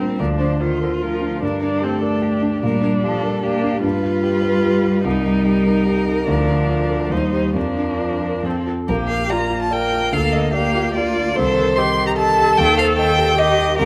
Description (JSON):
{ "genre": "quick classical-period movement for piano quartet", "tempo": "147 BPM", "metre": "3/4", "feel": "rubato", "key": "Bb major", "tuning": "A4 = 440 Hz", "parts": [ { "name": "warm violin", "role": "melody", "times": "0.0-13.9 s", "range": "G4 to C6", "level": "-24 LUFS", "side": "equal", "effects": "none" }, { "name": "rich cello", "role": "second line", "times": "0.0-13.9 s", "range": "D3 to Bb3", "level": "-26 LUFS", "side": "equal", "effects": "none" }, { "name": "dark concert grand piano", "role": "accompaniment", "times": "0.0-13.9 s", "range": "Bb1 to Eb5", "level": "-23 LUFS", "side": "equal", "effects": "none" }, { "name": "rich viola", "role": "accompaniment", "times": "0.0-13.9 s", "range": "C4 to Bb4", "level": "-25 LUFS", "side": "equal", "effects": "none" } ], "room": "wet recital hall reverb, RT60 1.4 s", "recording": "none", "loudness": "-18 LUFS", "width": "mono", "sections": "0.0-8.9 A section; 8.9-13.9 B section", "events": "none", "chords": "0.2 Bb/D; 1.4 Gm; 2.6 Gm/Bb; 3.8 G7; 5.0 Cm7; 6.3 Bb/D; 7.1 Cm/Eb; 7.6 Bb/F; 8.4 F; 8.9 Bb; 10.1 Bb/D; 11.4 Cm7; 12.6 Cm/Eb" }